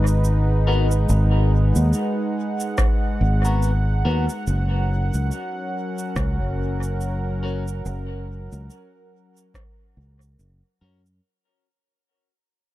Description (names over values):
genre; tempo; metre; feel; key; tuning
ambient dub; 71 BPM; 4/4; swing 58% on 16ths; unclear; A4 = 440 Hz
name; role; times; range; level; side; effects
warm analog pad; sustained chords; 0.0-11.2 s; F#3 to F#5; -27 LUFS; equal; chorus
fingered electric bass; bass; 0.0-11.2 s; F#1 to F#2; -20 LUFS; equal; none
electronic cabasa and rim click; drums; 0.1-11.2 s; none; -34 LUFS; right 1 dB; overdrive, dub echo
clean electric guitar; stabs; 0.7-11.0 s; B3 to A#4; -31 LUFS; left 5 dB; phaser, dub echo
electronic kick drum; drums; 2.8-9.7 s; none; -24 LUFS; equal; overdrive
room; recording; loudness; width
little or no reverb; dark, warm production; -19 LUFS; side -16 dB against mid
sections
0.0-11.2 A section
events
fade-out 2.2-11.2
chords
0.0 G#m7; 4.5 F#